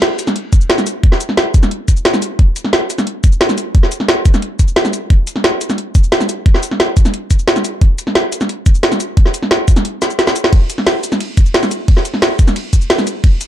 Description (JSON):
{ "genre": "drum and bass", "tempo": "177 BPM", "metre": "4/4", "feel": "straight", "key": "none", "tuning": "none", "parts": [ { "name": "drum and bass drum kit", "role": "drums", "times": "0.0-13.5 s", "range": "cabasa, hi-hat, ride cymbal, snare drum", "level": "-14 LUFS", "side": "equal", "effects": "none" }, { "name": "electronic kick drum", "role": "drums", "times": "0.5-13.3 s", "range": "none", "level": "-10 LUFS", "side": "equal", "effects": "none" } ], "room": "light reverb", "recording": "dark, warm production", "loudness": "-11 LUFS", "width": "side -12 dB against mid", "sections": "0.0-13.5 A section", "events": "break 9.8-10.5; drum fill 10.0-10.5", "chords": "none" }